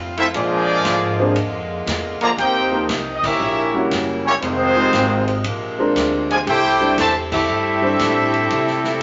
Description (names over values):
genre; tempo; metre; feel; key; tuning
jazz, big band swing; 118 BPM; 4/4; swing 67% on 8ths; unclear; A4 = 440 Hz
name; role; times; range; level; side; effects
clear saxophone section; sustained chords; 0.0-9.0 s; C3 to F4; -30 LUFS; equal; none
upright bass; bass; 0.0-9.0 s; F1 to C3; -30 LUFS; equal; none
clear trumpet section; melody; 0.2-9.0 s; Ab3 to Bb5; -21 LUFS; equal; none
clear trombone section; second line; 0.2-9.0 s; A2 to G4; -24 LUFS; equal; none
swinging big-band drum kit; drums; 0.2-9.0 s; crash cymbal, hi-hat, kick drum, ride cymbal, snare drum; -30 LUFS; equal; none
warm concert grand piano; accompaniment; 1.2-8.5 s; F3 to C5; -24 LUFS; equal; none
room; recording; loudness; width
wet large studio reverb, RT60 0.9 s; nothing above 7.6 kHz; -18 LUFS; mono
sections
0.0-9.0 A section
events
band accent 3.1, 7.2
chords
0.3 Bb7; 2.4 Eb6; 3.4 Edim7; 4.4 Fm7; 5.4 Bb9; 6.5 C6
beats
| 0.34 0.85 1.36 1.87 | 2.38 2.89 3.40 3.91 | 4.42 4.93 5.44 5.95 | 6.46 6.97 7.48 7.99 | 8.50 9.02